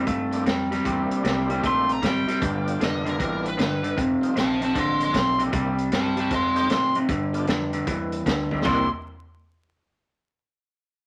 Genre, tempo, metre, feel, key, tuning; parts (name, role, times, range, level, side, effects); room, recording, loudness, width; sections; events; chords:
electric blues shuffle; 154 BPM; 4/4; swing 65% on 8ths; C mixolydian; A4 = 440 Hz
overdriven tonewheel organ; accompaniment; 0.0-8.9 s; G3 to G4; -34 LUFS; equal; slow rotary speaker, chorus vibrato
electric guitar through a small old amp; riff; 0.0-8.9 s; F2 to E4; -27 LUFS; equal
vintage muted fingered electric bass; bass; 0.0-8.9 s; F1 to A2; -37 LUFS; equal
vintage drum kit; drums; 0.1-8.8 s; crash cymbal, hi-hat, kick drum, snare drum, toms; -31 LUFS; equal
overdriven electric guitar; melody; 1.7-8.9 s; Bb4 to C6; -28 LUFS; equal
moderate studio reverb, RT60 0.8 s; vinyl crackle; -24 LUFS; mono
0.0-8.6 A section; 8.6-10.2 B section
drum fill 8.5
0.0 C7; 2.4 G7; 4.0 F7; 5.5 C7; 6.3 F7; 7.1 G7; 8.6 C7